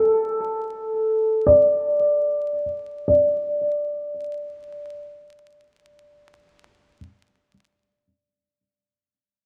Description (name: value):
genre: hip hop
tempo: free time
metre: none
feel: none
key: unclear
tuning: A4 = 439 Hz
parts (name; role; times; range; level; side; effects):
- dark upright piano; melody; 0.0-7.0 s; A4 to D5; -22 LUFS; equal; low-pass filter
room: moderate plate reverb, RT60 3.6 s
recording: dark, warm production, vinyl crackle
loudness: -21 LUFS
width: mono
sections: 0.0-3.1 A section; 3.1-6.3 B section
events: filter sweep on upright piano 0.0-3.1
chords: none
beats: free time